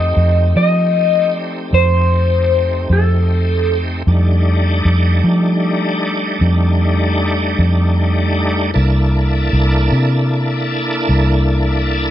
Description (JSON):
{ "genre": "slow blues", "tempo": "51 BPM (dotted quarters)", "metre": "12/8", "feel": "straight", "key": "unclear", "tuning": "A4 = 440 Hz", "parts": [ { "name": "electric guitar through a small old amp", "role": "melody", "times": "0.0-3.7 s", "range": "A4 to Eb5", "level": "-16 LUFS", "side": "left 2 dB", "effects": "phaser, plate reverb" }, { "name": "bright tonewheel organ", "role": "sustained chords", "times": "0.0-12.1 s", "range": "G3 to A4", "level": "-19 LUFS", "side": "equal", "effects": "slow rotary speaker, chorus vibrato, plate reverb" }, { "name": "vintage muted fingered electric bass", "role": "bass", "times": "0.0-12.1 s", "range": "C2 to F3", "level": "-14 LUFS", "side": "equal", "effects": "none" } ], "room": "light reverb", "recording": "none", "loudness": "-13 LUFS", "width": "side -12 dB against mid", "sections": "0.0-12.1 A section", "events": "none", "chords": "0.0 F13; 8.7 C13", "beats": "0.55 1.72 2.89 | 4.06 5.23 6.40 7.57 | 8.74 9.91 11.08" }